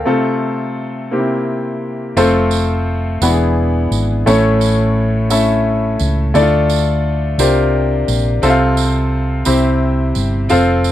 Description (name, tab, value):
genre	slow gospel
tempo	58 BPM (dotted quarters)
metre	6/8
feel	straight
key	F major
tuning	A4 = 441 Hz
part	clear baby grand piano	accompaniment	0.0-10.9 s	A2 to F5	-14 LUFS	left 1 dB	none
part	hollow-body short-scale fingered electric bass	bass	0.0-10.9 s	E1 to D2	-17 LUFS	right 1 dB	none
part	tambourine	percussion	2.2-10.9 s	none	-26 LUFS	right 16 dB	none
room	studio reverb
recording	dry, close 1970s-style studio recording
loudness	-13 LUFS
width	side -12 dB against mid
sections	0.0-2.2 A section; 2.2-10.9 B section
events	break 0.1-2.2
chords	0.1 F/C; 1.1 C7; 2.2 F; 3.2 E7; 4.3 A; 6.3 Dm; 7.4 C9sus4; 8.4 F/C; 9.5 C